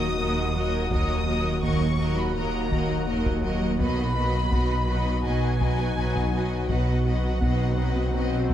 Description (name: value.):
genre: cinematic, hybrid orchestral and electronic film score.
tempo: 83 BPM.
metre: 4/4.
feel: straight.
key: unclear.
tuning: A4 = 440 Hz.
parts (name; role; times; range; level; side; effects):
rich symphonic violin section; melody; 0.0-8.5 s; F#5 to D#6; -32 LUFS; left 2 dB; none.
rich symphonic violin section; second line; 0.0-8.5 s; A#4 to D#5; -34 LUFS; left 3 dB; none.
clear symphonic viola section; accompaniment; 0.0-8.5 s; F#3 to F#4; -34 LUFS; right 2 dB; none.
deep dark ambient pad; sustained chords; 0.0-8.5 s; F#3 to F#5; -31 LUFS; left 2 dB; chorus, built-in reverb.
glassy wavetable pluck; arpeggios; 0.0-8.5 s; D#3 to B4; -34 LUFS; left 1 dB; none.
pure sine sub bass; bass; 0.0-8.5 s; D#1 to B1; -30 LUFS; equal; none.
rich symphonic double bass section; bass; 0.0-8.5 s; B1 to D#2; -31 LUFS; right 2 dB; none.
warm symphonic cello section; bass; 0.0-8.5 s; D#2 to B2; -29 LUFS; right 2 dB; none.
taiko ensemble; drums; 0.9-8.5 s; none; -30 LUFS; equal; none.
swell; sound effects; 7.2-8.5 s; none; -33 LUFS; right 1 dB; none.
room: light reverb.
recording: close, detailed microphones.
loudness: -22 LUFS.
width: side -11 dB against mid.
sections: 0.0-8.5 A section.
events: swell 7.2-8.5.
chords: 0.0 D#m; 3.8 B.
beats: 0.19 | 0.91 1.64 2.36 3.08 | 3.81 4.53 5.25 5.97 | 6.70 7.42 8.14.